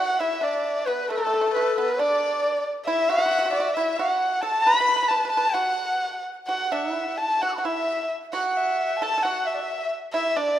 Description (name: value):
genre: chinese traditional, Chinese chamber ensemble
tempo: 67 BPM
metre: 2/4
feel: rubato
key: unclear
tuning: A4 = 438 Hz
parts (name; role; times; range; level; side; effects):
- warm erhu; melody; 0.0-10.6 s; A4 to B5; -24 LUFS; equal; none
- dizi; second line; 0.0-10.6 s; A4 to F#6; -26 LUFS; left 3 dB; none
- pipa; second line; 0.0-10.6 s; A3 to B4; -30 LUFS; right 5 dB; none
room: moderate recital hall reverb, RT60 1.7 s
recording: none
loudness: -21 LUFS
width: side -11 dB against mid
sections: 0.0-10.6 A section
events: none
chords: none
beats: 0.20 | 1.10 2.00 | 2.89 3.77 | 4.65 5.55 | 6.48 7.42 | 8.33 9.23 | 10.13